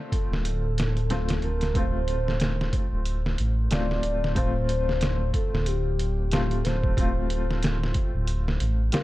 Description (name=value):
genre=trip hop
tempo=92 BPM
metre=4/4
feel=swing 58% on 16ths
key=D minor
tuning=A4 = 440 Hz
part: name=felt-muted upright piano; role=accompaniment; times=0.0-9.0 s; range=G3 to F4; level=-33 LUFS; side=left 2 dB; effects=tremolo
part: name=pure breathy sine lead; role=melody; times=0.1-9.0 s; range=G4 to D5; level=-33 LUFS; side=left 1 dB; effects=lush chorus, vintage 12-bit sampler grit, tape echo
part: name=trip hop sampler-style drum kit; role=drums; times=0.1-9.0 s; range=hi-hat, kick drum, snare drum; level=-27 LUFS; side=equal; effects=none
part: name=dark detuned saw bass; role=bass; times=0.3-8.9 s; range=D1 to A1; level=-26 LUFS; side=equal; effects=none
room=digital ambience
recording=dark, warm production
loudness=-23 LUFS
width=side -17 dB against mid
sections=0.0-9.0 A section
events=none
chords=0.0 Dm7; 4.4 G7sus4/D